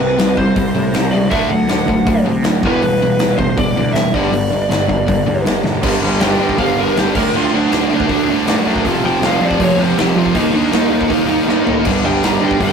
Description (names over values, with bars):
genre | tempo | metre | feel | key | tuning
punk rock | 160 BPM | 4/4 | straight | G major | A4 = 441 Hz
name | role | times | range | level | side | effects
lead guitar through a small cranked amp | melody | 0.0-12.7 s | D4 to Bb5 | -19 LUFS | equal | overdrive
cranked stack guitar | riff | 0.0-12.7 s | F2 to Eb4 | -21 LUFS | left 7 dB | overdrive
overdriven semi-hollow guitar | riff | 0.0-12.7 s | E2 to Eb4 | -17 LUFS | right 3 dB | none
fuzz picked electric bass | bass | 0.0-12.7 s | E1 to C3 | -22 LUFS | equal | overdrive
big rock drum kit | drums | 0.2-12.7 s | crash cymbal, hi-hat, kick drum, snare drum, toms | -20 LUFS | equal | none
room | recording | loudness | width
light reverb | rough rehearsal-room recording | -12 LUFS | side -6 dB against mid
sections
0.0-5.8 A section; 5.8-12.7 B section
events
drum fill 5.7, 11.5-11.9; lead electric guitar solo 5.8-12.7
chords
0.0 C5; 1.3 D; 2.6 Em; 4.1 G5; 5.8 G; 7.2 D; 8.8 F; 10.4 Eb; 11.9 G